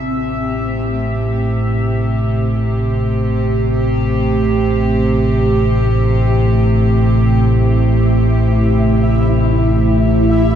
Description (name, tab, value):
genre	dark ambient drone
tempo	free time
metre	none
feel	none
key	A minor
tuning	A4 = 440 Hz
part	rich studio cello section	sustained chords	0.0-10.6 s	C3 to E5	-17 LUFS	right 2 dB	none
part	dark detuned synth bell	arpeggios	0.0-10.6 s	C4	-28 LUFS	left 3 dB	chorus, tape echo
part	deep rumbling drone	drone	0.0-10.6 s	A1 to A2	-15 LUFS	equal	built-in reverb
part	bubbling stepped-filter texture	texture	7.5-10.6 s	E4 to E5	-20 LUFS	left 1 dB	chorus, built-in reverb
room	wet huge ambient reverb, RT60 8.4 s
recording	dark, warm production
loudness	-12 LUFS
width	side -9 dB against mid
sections	0.0-10.6 A section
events	none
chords	0.0 Am7